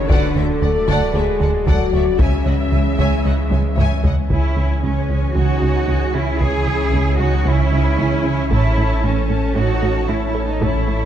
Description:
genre	cinematic, hybrid orchestral and electronic film score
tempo	114 BPM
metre	4/4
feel	straight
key	C# minor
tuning	A4 = 441 Hz
part	clear symphonic viola section	accompaniment	0.0-11.1 s	G#3 to E5	-30 LUFS	right 2 dB	none
part	mellow French horn section	sustained chords	0.0-11.1 s	G#3 to A4	-26 LUFS	left 5 dB	none
part	warbly tape-like pad	sustained chords	0.0-11.1 s	E3 to E5	-27 LUFS	equal	chorus, built-in reverb
part	punchy sub bass	bass	0.0-11.1 s	D1 to C#2	-22 LUFS	left 1 dB	none
part	rich symphonic cello section	bass	0.0-11.1 s	C#3 to G#4	-23 LUFS	right 2 dB	none
part	rich studio violin section	melody	0.1-4.1 s	E5 to G#5	-31 LUFS	left 4 dB	none
part	warm studio violin section	second line	0.1-11.1 s	A4 to A5	-28 LUFS	equal	none
part	plucky analog bass	riff	0.1-11.0 s	C#2 to A3	-22 LUFS	right 2 dB	none
part	rich symphonic double bass section	bass	0.1-11.1 s	A1 to D2	-23 LUFS	right 3 dB	none
part	taiko ensemble	drums	0.1-5.3, 8.5-11.1 s	none	-22 LUFS	left 1 dB	none
room	moderate concert hall reverb, RT60 2.2 s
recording	dark, warm production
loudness	-15 LUFS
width	side -10 dB against mid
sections	0.0-4.3 A section; 4.3-11.1 B section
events	drum fill 3.5-4.3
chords	0.1 D; 2.2 C#m; 8.5 A

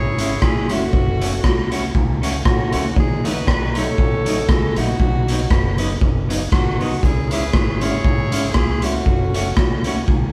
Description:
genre	ska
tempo	118 BPM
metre	4/4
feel	swing 55% on 8ths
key	C# minor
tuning	A4 = 441 Hz
part	warm horn section	melody	0.0-9.8 s	A3 to C#5	-27 LUFS	equal	none
part	upright bass	bass	0.0-10.3 s	E#1 to D#2	-27 LUFS	equal	none
part	clean electric guitar	accompaniment	0.2-10.0 s	F#3 to F#4	-29 LUFS	equal	spring reverb
part	raw garage drum kit	drums	0.2-10.2 s	hi-hat, kick drum, rim click	-20 LUFS	equal	none
room	light reverb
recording	band playing live in one room, vinyl crackle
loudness	-18 LUFS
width	mono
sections	0.0-10.3 A section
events	none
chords	0.0 C#m; 0.9 F#m; 3.0 D#dim; 5.0 B; 7.0 C#m; 9.1 F#m

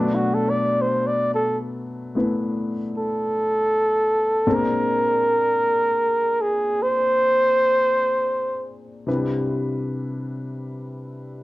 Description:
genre	jazz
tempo	52 BPM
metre	4/4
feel	swing 66% on 8ths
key	unclear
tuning	A4 = 440 Hz
part	warm flugelhorn	melody	0.0-8.7 s	D4 to D5	-19 LUFS	equal	none
part	clear grand piano	accompaniment	0.0-11.4 s	Bb2 to B4	-26 LUFS	left 2 dB	none
room	moderate large studio reverb, RT60 0.8 s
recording	worn, warbling old tape, cassette tape, warbly pitch drift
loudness	-19 LUFS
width	side -18 dB against mid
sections	0.0-11.4 A section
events	flugelhorn solo 0.0-11.4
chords	0.0 Bm7; 4.5 Bb9; 9.1 Cmaj9

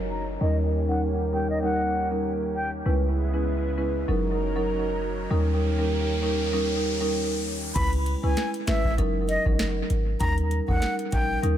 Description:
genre	dancehall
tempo	98 BPM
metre	4/4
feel	swing 56% on 16ths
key	unclear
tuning	A4 = 440 Hz
part	lush unison pad	sustained chords	0.0-7.7 s	C#3 to A#4	-34 LUFS	right 1 dB	chorus, sidechain pumping, low-pass filter
part	clean 808-style bass	bass	0.0-11.6 s	F#1 to D#2	-27 LUFS	equal	none
part	downlifter and riser	sound effects	0.0-7.8 s	none	-37 LUFS	equal	none
part	breathy concert flute	melody	0.1-2.7, 7.8-11.4 s	D#5 to B5	-30 LUFS	left 1 dB	low-pass filter, analog delay
part	marimba with medium mallets	accompaniment	0.4-11.6 s	F#3 to B4	-27 LUFS	equal	low-pass filter, analog delay
part	booming analog drum machine	drums	7.8-11.6 s	crash cymbal, hi-hat, kick drum, snare drum	-28 LUFS	equal	analog delay
room	digital ambience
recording	echo-heavy mix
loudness	-23 LUFS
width	side -10 dB against mid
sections	0.0-7.8 A section; 7.8-11.6 B section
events	filter sweep 0.0-7.8; riser 4.1-7.8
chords	0.4 D#7; 2.9 C#m7; 4.1 F#6; 5.3 D#7; 7.8 C#m7; 9.0 F#6; 10.2 D#7

